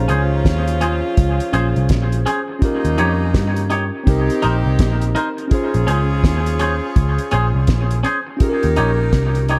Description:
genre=lovers rock reggae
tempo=83 BPM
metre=4/4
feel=swing 61% on 16ths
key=Bb dorian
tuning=A4 = 441 Hz
part: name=edgy saxophone section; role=second line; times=0.0-9.5 s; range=F3 to Bb4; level=-27 LUFS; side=equal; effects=none
part: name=mellow tine electric piano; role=accompaniment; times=0.0-9.6 s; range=C4 to Eb5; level=-27 LUFS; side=equal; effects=tape echo
part: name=vintage muted picked electric bass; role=bass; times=0.0-9.6 s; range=Bb1 to G2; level=-20 LUFS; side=equal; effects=none
part: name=twangy electric guitar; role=stabs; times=0.1-9.6 s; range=Db4 to Db5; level=-26 LUFS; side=equal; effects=subtle chorus, tape echo
part: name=cloth-damped thuddy drum kit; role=drums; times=0.1-9.6 s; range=hi-hat, kick drum, snare drum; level=-21 LUFS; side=equal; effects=gated reverb
room=light reverb, studio reverb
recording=none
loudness=-17 LUFS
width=mono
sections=0.0-9.6 A section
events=none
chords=0.0 Bbm9; 2.6 Eb7; 4.1 Cm7; 5.5 Bbm9; 8.4 Eb7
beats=0.45 1.17 1.90 | 2.62 3.34 4.07 4.79 | 5.51 6.24 6.96 7.68 | 8.41 9.13

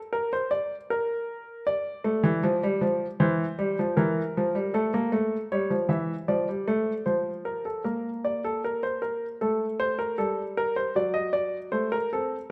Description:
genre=classical, baroque-style two-part invention for grand piano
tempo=78 BPM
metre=4/4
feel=straight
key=unclear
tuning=A4 = 440 Hz
part: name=warm baby grand piano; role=solo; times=0.1-12.4 s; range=E3 to E5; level=-27 LUFS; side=equal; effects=none
room=moderate recital hall reverb, RT60 1.4 s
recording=close, detailed microphones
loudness=-27 LUFS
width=mono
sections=0.0-7.8 A section; 7.8-12.5 B section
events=none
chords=0.0 N.C.; 1.7 Dm; 3.2 Edim; 4.7 A; 6.3 Dm/F; 7.8 N.C.; 9.4 Gmadd9; 10.9 D/F#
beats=0.12 0.89 | 1.66 2.43 3.19 3.96 | 4.73 5.50 6.28 7.06 | 7.84 8.62 9.39 10.16 | 10.93 11.70

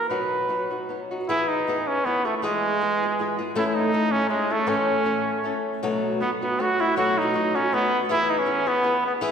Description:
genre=mexican folk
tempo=158 BPM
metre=3/4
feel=swing 55% on 8ths, rubato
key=E major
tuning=A4 = 440 Hz
part: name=warm trumpet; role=melody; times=0.0-9.3 s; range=G#3 to B4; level=-23 LUFS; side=right 2 dB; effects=none
part: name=flamenco guitar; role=accompaniment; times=0.0-9.3 s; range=A2 to A4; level=-26 LUFS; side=left 2 dB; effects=none
room=wet concert hall reverb, RT60 2.1 s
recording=heard from further back in the room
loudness=-21 LUFS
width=side -7 dB against mid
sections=0.0-1.3 A section; 1.3-9.3 B section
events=none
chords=0.1 B; 1.3 E; 3.6 A; 5.8 B7; 8.1 E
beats=| 0.09 0.49 0.89 | 1.28 1.67 2.05 | 2.43 2.81 3.19 | 3.56 3.93 4.31 | 4.68 5.06 5.45 | 5.83 6.21 6.59 | 6.96 7.33 7.71 | 8.08 8.46 8.84 | 9.21

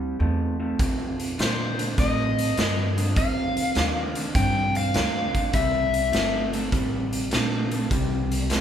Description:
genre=electric blues shuffle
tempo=101 BPM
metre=4/4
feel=swing 68% on 8ths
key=unclear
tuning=A4 = 440 Hz
part: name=electric guitar through a small old amp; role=riff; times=0.0-8.6 s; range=F2 to A3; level=-28 LUFS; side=right 2 dB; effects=none
part: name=upright bass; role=bass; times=0.0-8.6 s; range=G1 to Bb2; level=-27 LUFS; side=equal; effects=none
part: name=raw garage drum kit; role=drums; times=0.8-8.6 s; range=hi-hat, kick drum, snare drum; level=-26 LUFS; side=equal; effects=none
part: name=overdriven electric guitar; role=melody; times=1.4-6.5 s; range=C5 to G5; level=-26 LUFS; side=left 3 dB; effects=none
room=moderate large studio reverb, RT60 1.3 s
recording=band playing live in one room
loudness=-22 LUFS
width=side -9 dB against mid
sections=0.0-8.6 A section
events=none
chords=0.0 C69; 0.8 F13; 5.5 C13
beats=0.20 | 0.79 1.38 1.98 2.57 | 3.16 3.76 4.35 4.94 | 5.54 6.13 6.72 7.32 | 7.91 8.50

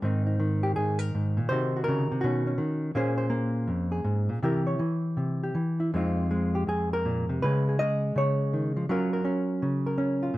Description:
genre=solo jazz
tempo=163 BPM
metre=4/4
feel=swing 66% on 8ths, rubato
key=Ab major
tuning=A4 = 440 Hz
part: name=hollow-body jazz guitar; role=solo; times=0.0-10.4 s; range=F2 to Eb5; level=-25 LUFS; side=equal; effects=none
room=light reverb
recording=close, detailed microphones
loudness=-25 LUFS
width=side -17 dB against mid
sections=0.0-10.4 A section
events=none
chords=0.0 Abadd9; 1.5 Cm7b5; 2.2 Badd9; 2.9 Bbm9; 4.4 C7; 5.9 Fm7; 7.4 Db7sus2; 8.9 Gbmaj7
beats=| 0.01 0.39 0.76 1.13 | 1.50 1.86 2.23 2.58 | 2.94 3.31 3.67 4.05 | 4.42 4.78 5.16 5.54 | 5.93 6.31 6.68 7.06 | 7.43 7.79 8.16 8.52 | 8.88 9.24 9.61 9.97 | 10.34

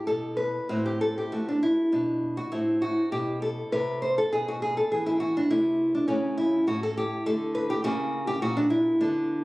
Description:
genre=classical, baroque-style dance for nylon-string guitar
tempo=101 BPM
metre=3/4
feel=rubato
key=unclear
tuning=A4 = 439 Hz
part: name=nylon-string guitar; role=solo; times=0.0-9.4 s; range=A2 to C5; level=-24 LUFS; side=equal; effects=none
room=wet recital hall reverb, RT60 1.4 s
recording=recorded on a phone in the room, studio ambience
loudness=-24 LUFS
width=side -20 dB against mid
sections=0.0-9.4 A section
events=none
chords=0.0 N.C.; 0.7 Am7; 1.9 N.C.; 2.5 Am; 4.3 E5/B; 5.5 Am/C; 6.1 A/C#; 7.3 D5; 7.8 F#7b9b13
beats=0.07 | 0.69 1.31 1.92 | 2.52 3.12 3.72 | 4.32 4.91 5.49 | 6.08 6.67 7.26 | 7.84 8.42 9.00

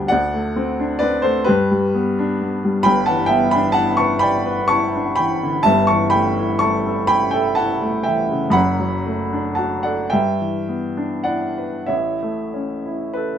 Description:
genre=classical, romantic nocturne for solo piano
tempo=31-45 BPM (dotted quarters)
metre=6/8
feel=rubato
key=unclear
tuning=A4 = 440 Hz
part: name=warm upright piano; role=solo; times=0.0-13.4 s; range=F#1 to C#6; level=-16 LUFS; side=equal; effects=none
room=light reverb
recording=minimal, uncompressed stereo recording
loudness=-16 LUFS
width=side -9 dB against mid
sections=0.0-13.4 A section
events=none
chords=0.1 D7; 1.5 G; 2.9 Em7/G; 5.7 A7/G; 8.6 D/F#; 10.1 Em7/G; 11.9 A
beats=| 0.11 1.48 | 2.86 4.24 | 5.66 7.09 | 8.55 10.13 | 11.91

